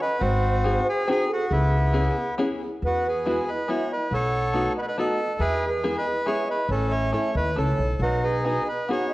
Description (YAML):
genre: musette waltz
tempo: 139 BPM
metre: 3/4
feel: rubato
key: E major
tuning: A4 = 435 Hz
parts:
  - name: bandoneon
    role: melody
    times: 0.0-9.1 s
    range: B3 to C#5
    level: -26 LUFS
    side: equal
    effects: none
  - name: mellow hollow bass bansuri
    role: second line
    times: 0.0-9.1 s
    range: G#4 to F#5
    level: -29 LUFS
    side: right 3 dB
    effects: none
  - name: upright bass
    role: bass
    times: 0.2-8.6 s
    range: G#1 to E2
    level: -25 LUFS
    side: equal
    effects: none
  - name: open-back banjo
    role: accompaniment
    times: 0.6-9.1 s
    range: G#3 to A4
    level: -28 LUFS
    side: left 2 dB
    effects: none
room: wet recital hall reverb, RT60 1.6 s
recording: worn, warbling old tape, cassette tape, warbly pitch drift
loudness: -22 LUFS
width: side -18 dB against mid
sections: 0.0-2.8 A section; 2.8-9.1 B section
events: none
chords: 0.2 G#7; 1.5 C#m7; 2.8 Eadd9; 4.1 B7; 5.4 E; 6.7 A; 8.0 B6